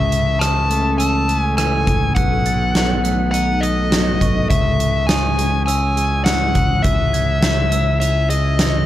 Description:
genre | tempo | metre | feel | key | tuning
post-rock | 103 BPM | 4/4 | straight | unclear | A4 = 437 Hz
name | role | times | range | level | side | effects
dark smooth lead guitar | melody | 0.0-8.9 s | D#5 to A5 | -20 LUFS | left 3 dB | overdrive, digital delay
evolving wavetable pad | sustained chords | 0.0-8.9 s | D#3 to A4 | -28 LUFS | equal | phaser, built-in reverb
glockenspiel with brass mallets | arpeggios | 0.0-8.9 s | C#6 to A6 | -29 LUFS | right 4 dB | digital delay
twelve-string electric guitar | arpeggios | 0.0-8.9 s | B2 to D#4 | -26 LUFS | left 1 dB | digital delay
growling fingered electric bass | bass | 0.0-8.9 s | B1 to C#2 | -19 LUFS | equal | overdrive
huge arena drum kit | drums | 0.1-8.7 s | hi-hat, kick drum, rim click, snare drum | -20 LUFS | right 1 dB | none
room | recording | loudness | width
small room ambience | dark, warm production | -15 LUFS | side -13 dB against mid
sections
0.0-8.9 A section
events
none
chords
0.0 A/C#; 2.2 B7; 4.5 C#m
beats
0.41 0.99 1.57 | 2.16 2.75 3.33 3.92 | 4.50 5.09 5.67 6.25 | 6.84 7.42 8.01 8.59

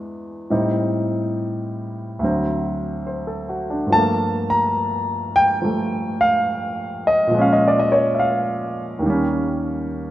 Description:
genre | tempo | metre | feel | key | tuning
solo jazz | 70 BPM | 4/4 | swing 68% on 8ths | G minor | A4 = 444 Hz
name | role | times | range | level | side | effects
warm baby grand piano | solo | 0.0-10.1 s | D2 to Bb5 | -18 LUFS | equal | none
room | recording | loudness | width
moderate lush hall reverb, RT60 2.1 s | rough home demo mix | -18 LUFS | side -14 dB against mid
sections
0.0-3.9 A section; 3.9-10.1 B section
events
none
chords
0.0 E7; 0.5 Am7b5; 2.2 D7; 3.9 Gm9; 7.3 Bbm7; 9.0 Eb7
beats
| 0.51 1.36 2.21 3.07 | 3.92 4.78 5.63 6.48 | 7.34 8.19 9.05 9.90

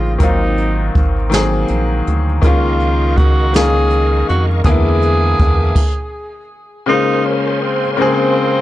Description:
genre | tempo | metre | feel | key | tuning
slow six-eight R&B | 54 BPM (dotted quarters) | 6/8 | straight | Bb minor | A4 = 441 Hz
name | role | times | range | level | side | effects
breathy tenor saxophone | melody | 0.0-8.6 s | C4 to Ab4 | -19 LUFS | right 1 dB | none
bright grand piano | accompaniment | 0.0-8.6 s | Db3 to C5 | -17 LUFS | left 3 dB | none
rubbery square bass | bass | 0.0-5.7 s | Ab1 to F2 | -16 LUFS | equal | tube saturation
jazz brush drum kit | drums | 0.2-5.9 s | crash cymbal, hi-hat, kick drum, snare drum | -15 LUFS | equal | vintage 12-bit sampler grit
bright tonewheel organ | sustained chords | 2.4-8.6 s | Bb4 to D6 | -25 LUFS | right 1 dB | chorus vibrato, fast rotary speaker
room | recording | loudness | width
small room ambience | dry, gritty hardware recording | -12 LUFS | side -14 dB against mid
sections
0.0-6.9 A section; 6.9-8.6 B section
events
stop 5.8-6.9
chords
0.2 Ab13; 2.4 Db69; 4.6 E7#11; 5.8 N.C.; 6.9 Bbm9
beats
| 0.20 1.31 | 2.42 3.53 | 4.64 5.75 | 6.87 7.98

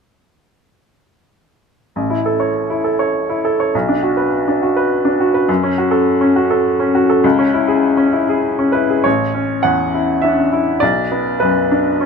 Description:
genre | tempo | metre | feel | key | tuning
classical | 102 BPM | 3/4 | rubato | A major | A4 = 438 Hz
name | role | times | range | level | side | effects
bright upright piano | accompaniment | 2.0-12.1 s | A1 to F#5 | -13 LUFS | equal | none
room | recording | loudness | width
light reverb | minimal, uncompressed stereo recording | -13 LUFS | side -5 dB against mid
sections
2.0-9.0 A section; 9.0-12.1 B section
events
none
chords
2.0 A; 3.7 Bm; 5.5 F#m; 7.2 C#m; 9.0 A; 10.8 Bm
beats
| 1.96 2.55 3.15 | 3.74 4.32 4.90 | 5.49 6.07 6.65 | 7.24 7.83 8.44 | 9.05 9.64 10.23 | 10.81 11.41 12.00

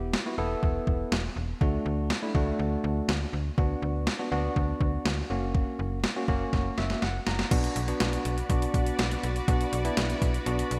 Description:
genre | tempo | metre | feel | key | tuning
synth-pop | 122 BPM | 4/4 | straight | B minor | A4 = 436 Hz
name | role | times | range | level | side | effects
bell-like tine electric piano | accompaniment | 0.0-10.8 s | A3 to A#5 | -34 LUFS | equal | none
slap-like FM bass | bass | 0.0-10.8 s | E1 to D2 | -33 LUFS | equal | none
clean 12-bit digital drum machine | drums | 0.1-10.8 s | crash cymbal, hi-hat, kick drum, snare drum | -31 LUFS | equal | overdrive, gated reverb
string machine, violas | sustained chords | 7.5-10.8 s | F#4 to B5 | -38 LUFS | equal | ensemble chorus
room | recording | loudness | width
moderate lush hall reverb, RT60 2.2 s | bright 1980s-style digital production | -28 LUFS | mono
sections
0.0-7.5 A section; 7.5-10.8 B section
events
drum fill 6.5-7.5; tine electric piano fill 6.5-7.5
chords
0.0 E5; 1.6 D; 3.6 Bm/D; 5.3 F#; 7.5 Bm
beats
0.14 0.63 1.12 | 1.61 2.10 2.60 3.09 | 3.58 4.07 4.56 5.05 | 5.54 6.04 6.53 7.02 | 7.51 8.00 8.50 8.99 | 9.48 9.97 10.46

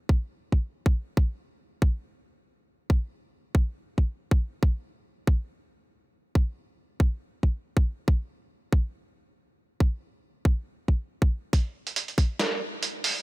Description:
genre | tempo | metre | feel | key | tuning
dubstep | 139 BPM | 4/4 | swing 55% on 16ths, half-time | none | none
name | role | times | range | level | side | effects
electronic kick drum | drums | 0.1-12.3 s | none | -22 LUFS | equal | none
trip hop sampler-style drum kit | drums | 11.5-13.1 s | hi-hat, snare drum | -27 LUFS | right 2 dB | high-pass filter on hats, low-pass filter on hats, high-pass filter on snare, low-pass filter on snare, high-pass filter on room, low-pass filter on room
room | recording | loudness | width
little or no reverb | none | -25 LUFS | side -21 dB against mid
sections
0.0-11.5 A section; 11.5-13.2 B section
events
build-up 11.5-13.2; filter sweep 11.5-13.2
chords
none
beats
0.31 0.74 | 1.17 1.60 2.04 2.47 | 2.90 3.33 3.76 4.19 | 4.62 5.06 5.49 5.92 | 6.35 6.78 7.21 7.65 | 8.08 8.51 8.94 9.37 | 9.80 10.24 10.67 11.10 | 11.53 11.96 12.39 12.83

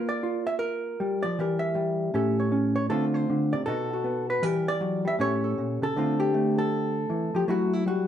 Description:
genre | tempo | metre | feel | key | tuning
solo jazz | 157 BPM | 4/4 | swing 64% on 8ths | D minor | A4 = 441 Hz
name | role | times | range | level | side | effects
hollow-body jazz guitar | solo | 0.0-8.1 s | A2 to E5 | -24 LUFS | equal | none
room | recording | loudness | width
wet large studio reverb, RT60 0.9 s | band playing live in one room | -24 LUFS | side -10 dB against mid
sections
0.0-8.1 A section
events
none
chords
0.0 Bb; 1.4 Edim; 2.1 A7; 2.9 Dm7; 3.7 B7; 4.4 Em7b5; 5.2 A7; 5.9 Dm7; 7.5 F#m7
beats
0.23 0.61 0.99 | 1.37 1.75 2.13 2.51 | 2.89 3.27 3.65 4.04 | 4.42 4.80 5.18 5.56 | 5.94 6.33 6.71 7.09 | 7.47 7.85

